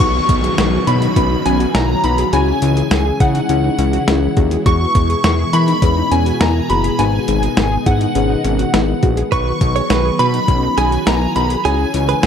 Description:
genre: synth-pop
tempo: 103 BPM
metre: 4/4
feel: straight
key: B major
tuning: A4 = 440 Hz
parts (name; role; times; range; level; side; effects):
- shimmering bell with halo; melody; 0.0-12.3 s; F#5 to C#6; -20 LUFS; left 1 dB; ensemble chorus, slapback echo
- muted felt-like synth keys; accompaniment; 0.0-12.3 s; B3 to C#5; -21 LUFS; left 11 dB; chorus
- string machine, violas; sustained chords; 0.0-12.3 s; B2 to F#4; -23 LUFS; equal; phaser, ensemble chorus
- wide unison pluck; arpeggios; 0.0-12.3 s; C#4 to G#4; -25 LUFS; right 5 dB; slapback echo
- fat analog bass; bass; 0.0-12.3 s; F#1 to E3; -18 LUFS; equal; none
- clean 12-bit digital drum machine; drums; 0.0-12.3 s; hi-hat, kick drum, snare drum; -18 LUFS; equal; none
- downlifter; sound effects; 0.0-4.7 s; none; -27 LUFS; right 1 dB; none
- direct-recorded clean electric guitar; second line; 9.3-12.3 s; G#4 to C#5; -21 LUFS; right 12 dB; slapback echo
room: light reverb, digital ambience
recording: dark, warm production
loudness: -13 LUFS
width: side -8 dB against mid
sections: 0.0-12.3 A section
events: none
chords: 0.0 B; 2.3 C#m; 4.7 E; 7.0 G#m; 9.3 B; 11.7 C#m

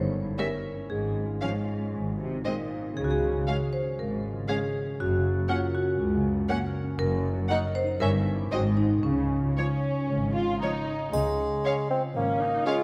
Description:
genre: cinematic, playful, whimsical film cue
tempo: 117 BPM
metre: 4/4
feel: straight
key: Db major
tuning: A4 = 441 Hz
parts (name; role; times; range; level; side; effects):
- marimba with hard mallets; melody; 0.0-10.6 s; Db4 to C5; -34 LUFS; equal; none
- concert harp; arpeggios; 0.0-12.8 s; Gb2 to Eb5; -34 LUFS; equal; none
- warm studio cello section; bass; 0.0-12.6 s; Db2 to Db3; -34 LUFS; equal; none
- warm studio double bass section; bass; 0.0-12.6 s; Gb1 to Db2; -35 LUFS; equal; none
- rich studio violin section; melody; 0.4-12.7 s; Db5 to Gb5; -39 LUFS; equal; none
- warm studio violin section; second line; 0.4-12.7 s; C4 to Db5; -35 LUFS; equal; none
- warm studio viola section; accompaniment; 0.4-12.8 s; F3 to F4; -39 LUFS; equal; none
- warm bassoon; accompaniment; 11.1-12.8 s; Ab3 to C4; -28 LUFS; equal; none
- triangle; percussion; 11.1-12.1 s; none; -51 LUFS; equal; none
room: moderate scoring stage reverb, RT60 2.0 s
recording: none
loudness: -27 LUFS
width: mono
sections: 0.0-11.1 A section; 11.1-12.8 A section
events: none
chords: 0.0 Gdim7; 0.9 Db/Ab; 1.9 Ab; 3.0 Db; 5.0 Gb; 7.0 Ebm/Gb; 8.0 Gdim7; 8.5 Ab7; 9.0 Db

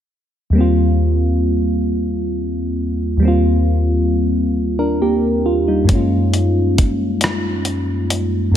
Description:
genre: slow six-eight R&B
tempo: 45 BPM (dotted quarters)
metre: 6/8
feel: straight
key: Eb major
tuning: A4 = 439 Hz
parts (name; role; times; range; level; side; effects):
- mellow FM electric piano; accompaniment; 0.5-8.6 s; Eb2 to Bb4; -15 LUFS; equal; chorus
- dusty soul sampler-style drum kit; drums; 5.9-8.3 s; hi-hat, kick drum, rim click; -18 LUFS; equal; none
room: light reverb, digital ambience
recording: dense, heavily limited modern master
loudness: -15 LUFS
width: side -10 dB against mid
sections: 0.6-8.6 A section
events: none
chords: 0.6 Eb6; 5.9 Gbmaj9

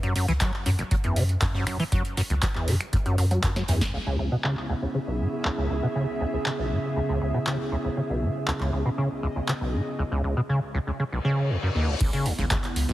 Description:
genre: acid house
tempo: 119 BPM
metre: 4/4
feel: straight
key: C# minor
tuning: A4 = 440 Hz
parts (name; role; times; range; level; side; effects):
- deep acid bass; riff; 0.0-12.9 s; F#1 to F#3; -26 LUFS; equal; overdrive, wide subtle chorus, sidechain pumping, digital delay
- booming analog drum machine; drums; 0.0-12.9 s; crash cymbal, finger snaps, handclaps, hi-hat, snare drum; -31 LUFS; equal; low-pass filter on hats, low-pass filter on snare, low-pass filter on cymbals
- jazz brush drum kit; drums; 0.2-3.9, 12.0-12.9 s; hi-hat, snare drum; -42 LUFS; right 2 dB; none
- round analog bass; bass; 0.3-3.9, 12.0-12.9 s; G#1 to F#2; -26 LUFS; equal; sidechain pumping
- electronic kick drum; drums; 0.4-3.9, 12.0-12.6 s; none; -27 LUFS; equal; none
- warbly tape-like pad; sustained chords; 3.9-12.9 s; C#3 to E4; -34 LUFS; equal; chorus, built-in reverb, sidechain pumping
- airy breathy pad; texture; 4.4-10.0 s; C#4 to E5; -33 LUFS; right 2 dB; chorus, sidechain pumping
- reverse cymbal; sound effects; 11.2-12.0 s; none; -34 LUFS; left 5 dB; none
room: light reverb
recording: heavily compressed radio sound, multiband compression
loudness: -23 LUFS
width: side -15 dB against mid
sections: 0.0-3.9 A section; 3.9-12.0 B section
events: drop 0.0-3.9; drum fill 3.6-3.9; band accent 3.8; filter sweep on drum 3.9-12.0; reverse cymbal 11.2-12.0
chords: 0.0 F#5; 3.9 C#m7

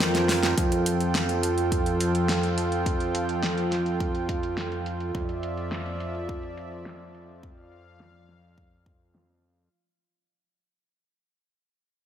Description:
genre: synthwave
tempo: 105 BPM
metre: 4/4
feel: straight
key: F major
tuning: A4 = 440 Hz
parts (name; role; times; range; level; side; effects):
- warm analog pad; sustained chords; 0.0-9.7 s; F3 to G5; -27 LUFS; right 2 dB; chorus
- fat analog bass; bass; 0.0-9.7 s; F2; -31 LUFS; equal; tube saturation
- pop drum kit; drums; 0.0-9.7 s; hi-hat, snare drum; -30 LUFS; equal; low-pass filter on hats, studio reverb, low-pass filter on snare
- electronic kick drum; drums; 0.6-9.0 s; none; -30 LUFS; left 1 dB; studio reverb
room: moderate plate reverb, RT60 2.4 s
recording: dreamy mix soaked in reverb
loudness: -24 LUFS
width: side -9 dB against mid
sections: 0.6-9.7 A section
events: drum fill 0.1-0.6; fade-out 0.6-9.7; filter sweep on drum 0.6-9.7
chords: 0.0 Gm/F; 0.6 Fadd9; 5.1 Dmadd9/F

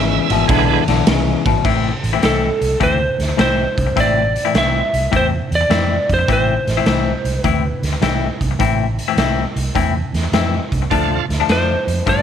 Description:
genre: electric blues shuffle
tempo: 104 BPM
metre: 4/4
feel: swing 67% on 8ths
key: A minor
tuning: A4 = 440 Hz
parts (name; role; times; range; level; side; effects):
- bright tonewheel organ; accompaniment; 0.0-0.8, 10.9-11.3 s; E3 to E5; -20 LUFS; right 14 dB; slow rotary speaker, overdrive
- semi-hollow electric guitar; riff; 0.0-12.2 s; E2 to E4; -19 LUFS; left 12 dB; none
- vintage muted fingered electric bass; bass; 0.0-12.2 s; G#1 to G2; -20 LUFS; right 2 dB; none
- raw garage drum kit; drums; 0.3-12.2 s; crash cymbal, hi-hat, kick drum, ride cymbal, snare drum; -20 LUFS; right 2 dB; none
- lightly driven lead guitar; melody; 2.3-8.0, 11.5-12.2 s; A4 to E5; -18 LUFS; right 1 dB; none
room: light reverb, studio ambience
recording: 1960s-style stereo with parts hard left and right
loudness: -14 LUFS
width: side -8 dB against mid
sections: 0.0-1.6 A section; 1.6-12.2 B section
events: none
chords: 0.0 E7; 1.6 Am; 10.9 Dm

